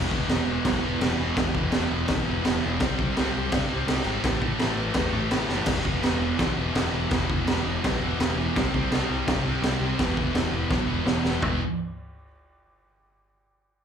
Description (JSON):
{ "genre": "garage rock duo or trio", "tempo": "167 BPM", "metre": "4/4", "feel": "straight", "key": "E minor", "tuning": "A4 = 440 Hz", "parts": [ { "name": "thick fuzz guitar", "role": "riff", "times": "0.0-11.6 s", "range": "E2 to C4", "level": "-26 LUFS", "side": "right 1 dB", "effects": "distortion" }, { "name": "picked electric bass", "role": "bass", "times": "0.0-11.6 s", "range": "E1 to G2", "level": "-30 LUFS", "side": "equal", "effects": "overdrive" }, { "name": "raw garage drum kit", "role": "drums", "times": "0.1-11.5 s", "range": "crash cymbal, kick drum, snare drum, toms", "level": "-26 LUFS", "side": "equal", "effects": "none" } ], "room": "little or no reverb", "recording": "live gig heard through the venue's PA, club ambience, faint mains hum", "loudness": "-22 LUFS", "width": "side -8 dB against mid", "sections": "0.0-11.4 A section; 11.4-12.9 B section", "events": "drum fill 5.5, 10.7-11.4", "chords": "0.0 E5; 2.8 C5; 4.2 A5; 5.7 E5; 8.6 C5; 10.0 E5" }